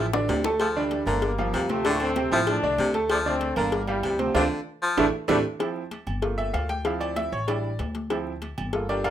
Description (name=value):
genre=latin, salsa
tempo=192 BPM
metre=4/4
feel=straight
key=D minor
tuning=A4 = 440 Hz
part: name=bright baritone saxophone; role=second line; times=0.0-5.4 s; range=C3 to F3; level=-28 LUFS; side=left 2 dB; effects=none
part: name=bright upright piano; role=accompaniment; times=0.0-9.1 s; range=A2 to Bb5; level=-26 LUFS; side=right 3 dB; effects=none
part: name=upright bass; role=bass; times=0.0-9.1 s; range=G1 to D2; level=-32 LUFS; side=equal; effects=none
part: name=bongos and cowbell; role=percussion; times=0.1-9.1 s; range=none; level=-31 LUFS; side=left 4 dB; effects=none
part: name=congas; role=percussion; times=0.1-9.1 s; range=none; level=-37 LUFS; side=left 1 dB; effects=none
part: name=timbales and agogo bells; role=percussion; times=0.1-9.1 s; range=none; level=-36 LUFS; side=right 6 dB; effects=none
part: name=bright trombone section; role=melody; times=0.6-5.4 s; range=D3 to D4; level=-29 LUFS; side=left 2 dB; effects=none
room=moderate studio reverb, RT60 0.6 s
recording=rough home demo mix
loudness=-23 LUFS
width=side -10 dB against mid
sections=0.0-5.6 A section; 5.6-9.1 B section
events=drum fill 0.0-0.6, 4.3-5.6; band accent 4.3-5.6; upright piano solo 5.6-9.1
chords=0.0 Asus4; 0.6 Dm; 1.2 Gm7; 1.9 Asus4; 3.1 Dm7; 3.7 Gm7; 4.3 Dm7; 5.0 Asus4; 5.6 Cadd11; 6.2 Gm7; 6.9 Dm7; 7.5 A7sus4; 8.1 Dm7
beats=0.29 | 0.60 0.91 1.23 1.54 | 1.85 2.16 2.48 2.79 | 3.10 3.41 3.73 4.04 | 4.35 4.66 4.97 5.29 | 5.60 5.91 6.23 6.54 | 6.85 7.17 7.48 7.79 | 8.11 8.42 8.73 9.04